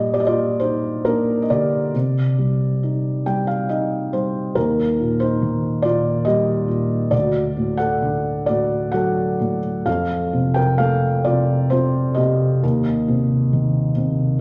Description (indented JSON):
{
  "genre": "classical, lyrical solo piano",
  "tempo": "64-72 BPM",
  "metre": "3/4",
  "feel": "rubato",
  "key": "unclear",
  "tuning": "A4 = 440 Hz",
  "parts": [
    { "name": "felt-muted upright piano", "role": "solo", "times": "0.0-14.4 s", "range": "D2 to G5", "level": "-20 LUFS", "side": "equal", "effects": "none" }
  ],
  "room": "wet recital hall reverb, RT60 1.5 s",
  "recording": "none",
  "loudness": "-20 LUFS",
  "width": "mono",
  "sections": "0.0-14.4 A section",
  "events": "felt piano fill 2.8-4.6",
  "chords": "0.0 Gm; 1.9 Cm; 4.6 Eb; 7.1 D; 9.9 F; 12.6 Cm/Eb"
}